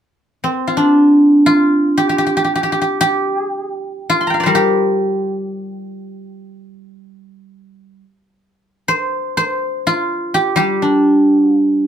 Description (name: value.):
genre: chinese traditional, Chinese solo plucked strings.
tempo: free time.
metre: none.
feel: none.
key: G yu mode.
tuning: A4 = 438 Hz.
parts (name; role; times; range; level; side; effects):
guzheng; solo; 0.4-11.9 s; G3 to C6; -13 LUFS; equal; none.
room: light reverb.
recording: band playing live in one room.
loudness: -13 LUFS.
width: side -9 dB against mid.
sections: 0.0-8.9 A section; 8.9-11.9 B section.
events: none.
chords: none.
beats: free time.